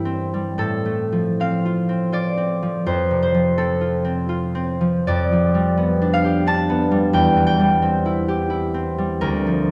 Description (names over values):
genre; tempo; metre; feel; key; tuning
classical, solo harp piece; 71-89 BPM; 3/4; rubato; F major; A4 = 440 Hz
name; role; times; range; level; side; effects
concert harp; solo; 0.0-9.7 s; D2 to A5; -20 LUFS; equal; none
room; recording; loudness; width
wet recital hall reverb, RT60 1.6 s; recorded in a church or concert hall; -20 LUFS; mono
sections
0.0-9.7 A section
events
none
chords
0.0 C7/G; 0.6 F/A; 2.9 F; 5.1 G7/F; 7.2 C/E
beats
| 0.57 1.39 2.13 | 2.86 3.57 4.29 | 5.07 5.77 6.47 | 7.16 7.84 8.53 | 9.24